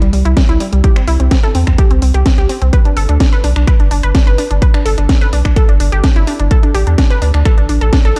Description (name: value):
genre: progressive house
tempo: 127 BPM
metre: 4/4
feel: straight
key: C major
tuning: A4 = 438 Hz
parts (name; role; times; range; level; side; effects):
- glassy wavetable pluck; arpeggios; 0.0-8.2 s; G3 to B4; -21 LUFS; equal; chorus, sidechain pumping, digital delay
- saturated sub bass; bass; 0.0-8.1 s; G1 to E2; -15 LUFS; equal; sidechain pumping
- house drum kit; drums; 0.0-8.2 s; finger snaps, hi-hat, snare drum; -24 LUFS; equal; overdrive
- electronic kick drum; drums; 0.4-8.0 s; none; -13 LUFS; equal; overdrive
room: little or no reverb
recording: dark, warm production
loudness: -12 LUFS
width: mono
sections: 0.0-8.2 A section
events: none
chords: 0.0 C; 2.7 G; 6.5 D5/A